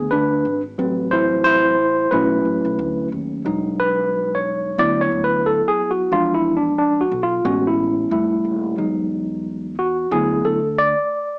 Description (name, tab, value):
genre	hip hop, jazz-hop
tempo	90 BPM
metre	4/4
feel	swing 59% on 16ths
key	E major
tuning	A4 = 440 Hz
part	tine electric piano	accompaniment	0.0-11.4 s	F3 to D5	-17 LUFS	equal	medium stereo tremolo, cassette tape
part	upright bass	bass	0.0-10.9 s	D#1 to E2	-28 LUFS	equal	none
room	light reverb, small room ambience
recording	home recording on cassette, small speaker sound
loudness	-16 LUFS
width	side -34 dB against mid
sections	0.0-3.5 A section; 3.5-11.4 B section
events	tine electric piano solo 0.0-3.5, 3.5-11.4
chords	0.0 E7 (rootless); 0.8 Am6; 2.1 B7sus4; 3.5 Emaj7; 4.8 D6; 6.1 E7b9; 7.5 Amaj9; 8.1 Fmaj7; 8.8 Emaj7; 10.1 D6